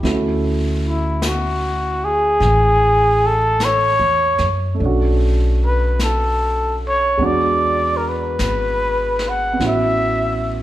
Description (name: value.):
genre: jazz ballad.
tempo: 50 BPM.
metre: 4/4.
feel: swing 68% on 8ths.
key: unclear.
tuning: A4 = 439 Hz.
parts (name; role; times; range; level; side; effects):
warm concert grand piano; accompaniment; 0.0-10.6 s; G#3 to F#4; -24 LUFS; right 3 dB; none.
upright bass; bass; 0.0-10.6 s; G#1 to F#2; -20 LUFS; equal; none.
jazz brush drum kit; drums; 0.0-10.6 s; brushed snare drum, hi-hat, snare drum; -30 LUFS; left 2 dB; none.
breathy trumpet; melody; 0.9-10.6 s; E4 to F#5; -17 LUFS; equal; none.
room: wet recital hall reverb, RT60 1.4 s.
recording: recorded in a church or concert hall.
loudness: -15 LUFS.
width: side -14 dB against mid.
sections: 0.0-10.6 A section.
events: none.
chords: 0.0 Dmaj9; 4.8 Bm9; 7.2 E7; 9.6 A6.